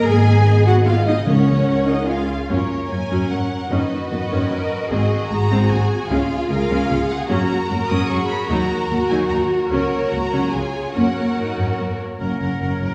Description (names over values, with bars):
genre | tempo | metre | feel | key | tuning
cinematic, heroic adventure film score | 150 BPM | 3/4 | straight | F# major | A4 = 439 Hz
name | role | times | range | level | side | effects
warm symphonic violin section | melody | 0.0-12.9 s | C#5 to D#6 | -31 LUFS | equal | none
clear symphonic violin section | second line | 0.0-12.9 s | C#4 to G#5 | -30 LUFS | equal | none
mellow large flute ensemble | second line | 0.0-2.5, 12.2-12.9 s | C#5 to G#5 | -32 LUFS | equal | none
rich symphonic viola section | accompaniment | 0.0-12.9 s | D#3 to A#4 | -25 LUFS | equal | none
warm French horn section | sustained chords | 0.0-2.5, 12.2-12.3 s | A#3 to G#4 | -30 LUFS | equal | none
clear symphonic double bass section | bass | 0.0-12.9 s | F#1 to F#2 | -23 LUFS | equal | none
warm symphonic cello section | bass | 0.0-12.9 s | F#2 to A#4 | -27 LUFS | equal | none
timpani | percussion | 1.3-1.8 s | C#3 | -23 LUFS | equal | none
clear oboe | second line | 12.2-12.9 s | A#4 | -34 LUFS | equal | none
room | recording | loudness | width
wet scoring stage reverb, RT60 1.5 s | heard from further back in the room, studio reverb | -19 LUFS | mono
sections
0.0-2.5 A section; 2.5-12.2 B section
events
none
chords
0.1 G#m; 1.3 F#/C#; 2.1 C#; 2.5 F#; 3.7 Badd9; 4.9 G#7; 6.1 C#; 7.3 F#; 8.5 D#m; 9.7 F#; 10.5 C#; 10.9 F#